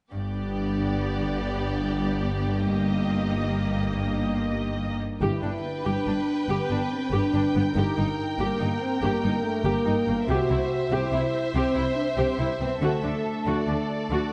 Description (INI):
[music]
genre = cinematic, heroic adventure film score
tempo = 94 BPM (dotted quarters)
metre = 12/8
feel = straight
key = unclear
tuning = A4 = 440 Hz
[part]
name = rich symphonic violin section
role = melody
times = 0.1-14.3 s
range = D5 to G5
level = -37 LUFS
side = equal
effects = none
[part]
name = warm symphonic violin section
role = second line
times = 0.1-14.3 s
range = G4 to C5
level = -36 LUFS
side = equal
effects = none
[part]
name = warm studio viola section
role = accompaniment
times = 0.1-14.3 s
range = Bb3 to G4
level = -34 LUFS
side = equal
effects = none
[part]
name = concert harp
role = arpeggios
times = 0.1-14.3 s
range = G2 to D5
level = -37 LUFS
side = equal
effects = none
[part]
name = rich studio double bass section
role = bass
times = 0.1-14.2 s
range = G1 to D2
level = -32 LUFS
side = equal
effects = none
[part]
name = rich symphonic cello section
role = bass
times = 0.1-14.2 s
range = G2 to D3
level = -33 LUFS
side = equal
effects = none
[part]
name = mellow French horn section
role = sustained chords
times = 5.2-14.3 s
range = A3 to F#4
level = -30 LUFS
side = equal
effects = none
[part]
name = timpani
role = percussion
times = 5.2-5.8 s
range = G2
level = -38 LUFS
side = equal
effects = none
[sound]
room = moderate scoring stage reverb, RT60 1.8 s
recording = nothing above 10.6 kHz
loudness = -26 LUFS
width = mono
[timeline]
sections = 0.1-5.2 A section; 5.2-14.3 B section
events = none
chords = 0.1 G; 2.7 Eb/G; 5.2 G; 7.8 Eb/G; 10.3 C; 12.8 D